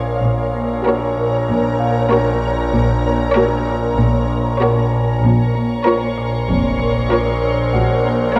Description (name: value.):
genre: cinematic.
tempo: 96 BPM.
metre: 4/4.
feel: straight.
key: unclear.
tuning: A4 = 444 Hz.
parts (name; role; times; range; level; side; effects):
muted chamber violin section; second line; 0.0-8.4 s; Bb4 to Db5; -23 LUFS; equal; none.
muted chamber viola section; accompaniment; 0.0-8.4 s; Bb3 to F5; -24 LUFS; equal; none.
ethereal airy pad; sustained chords; 0.0-8.4 s; Bb4 to Bb5; -24 LUFS; equal; ensemble chorus, built-in reverb, tremolo.
marimba with medium hard mallets; riff; 0.0-8.4 s; Bb2 to Bb3; -22 LUFS; equal; none.
overtone-sweeping drone; drone; 0.0-8.4 s; Bb1; -24 LUFS; equal; chorus, built-in reverb.
celesta; texture; 0.0-8.4 s; F4 to Gb5; -30 LUFS; equal; none.
muted chamber cello section; bass; 0.2-8.2 s; F2 to Bb2; -25 LUFS; equal; none.
muted chamber double bass section; bass; 0.2-8.2 s; F1 to Bb1; -26 LUFS; equal; none.
muted studio violin section; texture; 5.2-8.4 s; Bb5 to Db6; -32 LUFS; equal; none.
room: wet scoring stage reverb, RT60 1.4 s.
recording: none.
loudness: -17 LUFS.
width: mono.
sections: 0.0-8.4 A section.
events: none.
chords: 0.2 Gb/Bb; 5.2 Bbm.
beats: | 0.24 0.86 1.49 2.11 | 2.74 3.36 3.99 4.61 | 5.24 5.86 6.49 7.11 | 7.74 8.36.